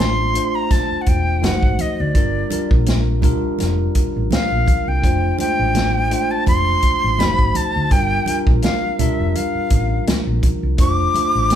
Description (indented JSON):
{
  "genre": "lush 1970s-style soul",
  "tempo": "83 BPM",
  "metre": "4/4",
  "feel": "swing 54% on 16ths",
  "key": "G minor",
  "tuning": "A4 = 440 Hz",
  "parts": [
    { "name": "breathy bright jazz flute", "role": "melody", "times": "0.0-11.6 s", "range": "D5 to D6", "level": "-20 LUFS", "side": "left 1 dB", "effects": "none" },
    { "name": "bell-like tine electric piano", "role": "accompaniment", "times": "0.0-11.6 s", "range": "G3 to C5", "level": "-23 LUFS", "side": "equal", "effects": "medium stereo tremolo" },
    { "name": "hollow-body short-scale fingered electric bass", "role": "bass", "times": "0.0-11.6 s", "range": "E1 to D2", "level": "-21 LUFS", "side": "equal", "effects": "none" },
    { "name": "vintage drum kit", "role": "drums", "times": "0.0-11.6 s", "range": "hi-hat, kick drum, snare drum", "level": "-18 LUFS", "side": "equal", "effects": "none" },
    { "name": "congas", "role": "percussion", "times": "0.7-11.6 s", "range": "none", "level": "-26 LUFS", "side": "right 3 dB", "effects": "none" }
  ],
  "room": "moderate large studio reverb, RT60 0.8 s",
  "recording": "band playing live in one room",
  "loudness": "-15 LUFS",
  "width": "side -10 dB against mid",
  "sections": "0.0-11.6 A section",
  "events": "none",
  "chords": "0.0 F6; 1.4 F#dim7; 2.1 Gm7; 5.0 F6; 7.2 F#dim7; 7.9 Gm7; 10.8 F6"
}